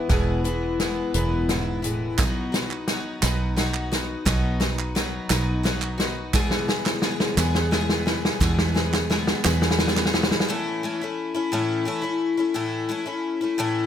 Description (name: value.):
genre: indie folk with a building arrangement.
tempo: 58 BPM (dotted quarters).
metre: 6/8.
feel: straight.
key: E major.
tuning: A4 = 443 Hz.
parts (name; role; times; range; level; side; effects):
fingerpicked steel-string acoustic guitar; accompaniment; 0.0-2.2 s; E2 to G#4; -29 LUFS; equal; none.
picked twelve-string acoustic guitar; accompaniment; 0.0-13.9 s; E2 to G#4; -26 LUFS; left 3 dB; none.
fingered electric bass; bass; 0.1-10.4 s; E1 to E2; -26 LUFS; right 1 dB; none.
natural country drum kit; drums; 0.1-10.6 s; hi-hat, kick drum, snare drum; -24 LUFS; equal; none.
group handclap; percussion; 2.2-10.1 s; none; -30 LUFS; right 8 dB; none.
tambourine; percussion; 2.2-9.6 s; none; -38 LUFS; right 17 dB; none.
room: light reverb, small room ambience.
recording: none.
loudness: -21 LUFS.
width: side -9 dB against mid.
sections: 0.0-10.5 A section; 10.5-13.9 B section.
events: build-up 0.0-10.5; drum fill 0.0-10.5.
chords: 0.0 E; 2.2 B; 6.3 E; 10.5 A.